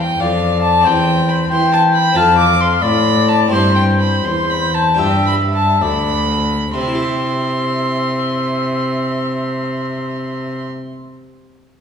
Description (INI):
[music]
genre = classical, baroque-style sonata movement with continuo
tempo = 63-92 BPM (dotted quarters)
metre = 12/8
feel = straight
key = C major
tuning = A4 = 440 Hz
[part]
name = warm violin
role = second line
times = 0.0-10.6 s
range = F5 to D6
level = -18 LUFS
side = equal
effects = none
[part]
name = harpsichord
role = accompaniment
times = 0.0-10.9 s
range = D2 to E5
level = -23 LUFS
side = equal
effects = none
[part]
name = rich cello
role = bass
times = 0.0-10.6 s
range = D2 to E3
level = -19 LUFS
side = equal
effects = none
[part]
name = mellow oboe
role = melody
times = 0.2-10.7 s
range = C5 to G5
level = -20 LUFS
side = left 4 dB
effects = none
[sound]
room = wet recital hall reverb, RT60 1.6 s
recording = recorded in a church or concert hall, small room ambience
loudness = -13 LUFS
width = side -7 dB against mid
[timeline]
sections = 0.0-6.7 A section; 6.7-10.5 B section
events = slowing down 1.7-6.7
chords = 0.0 F; 0.8 C/E; 2.2 F; 3.5 C/G; 5.0 G7; 6.7 C